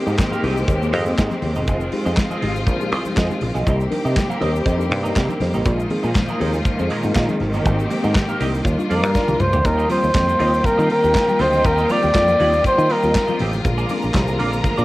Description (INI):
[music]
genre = disco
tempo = 120 BPM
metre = 4/4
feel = straight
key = unclear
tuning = A4 = 440 Hz
[part]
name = mellow tine electric piano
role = accompaniment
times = 0.0-14.8 s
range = Ab2 to Bb4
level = -28 LUFS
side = left 2 dB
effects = medium stereo tremolo, cassette tape
[part]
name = clear studio string section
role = sustained chords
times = 0.0-14.8 s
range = D3 to G4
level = -24 LUFS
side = equal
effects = cassette tape
[part]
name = electric guitar at the edge of break-up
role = accompaniment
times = 0.1-14.8 s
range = Bb3 to F5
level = -29 LUFS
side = right 3 dB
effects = wah, lush chorus, cassette tape
[part]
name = fingered electric bass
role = bass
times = 0.1-14.8 s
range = E1 to Eb3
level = -21 LUFS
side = equal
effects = none
[part]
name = egg shaker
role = percussion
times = 0.1-14.8 s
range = none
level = -48 LUFS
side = left 4 dB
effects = none
[part]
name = modern studio drum kit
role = drums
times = 0.2-14.8 s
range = handclaps, hi-hat, kick drum, snare drum, toms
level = -22 LUFS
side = equal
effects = cassette tape
[part]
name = congas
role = percussion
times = 0.2-14.8 s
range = none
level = -33 LUFS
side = left 3 dB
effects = none
[part]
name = warm flugelhorn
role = melody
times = 8.9-13.4 s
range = Bb4 to D5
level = -17 LUFS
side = equal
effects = cassette tape
[part]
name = warm studio violin section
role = second line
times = 9.6-14.8 s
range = G4 to Bb5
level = -29 LUFS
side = equal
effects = cassette tape
[sound]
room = light reverb, studio ambience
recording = home recording on cassette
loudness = -16 LUFS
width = side -18 dB against mid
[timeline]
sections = 0.0-9.7 A section; 9.7-14.8 B section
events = drum fill 9.2-9.7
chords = 0.0 Abmaj9; 1.7 Fm7; 3.7 Cm7; 5.7 Bb7sus4; 7.4 Abmaj9; 8.7 Ebmaj9; 9.7 Eb69; 13.6 Bb7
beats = 0.19 0.69 1.18 | 1.68 2.18 2.67 3.17 | 3.67 4.17 4.67 5.16 | 5.66 6.16 6.66 7.16 | 7.66 8.15 8.65 9.15 | 9.65 10.15 10.65 11.15 | 11.65 12.15 12.65 13.15 | 13.65 14.15 14.65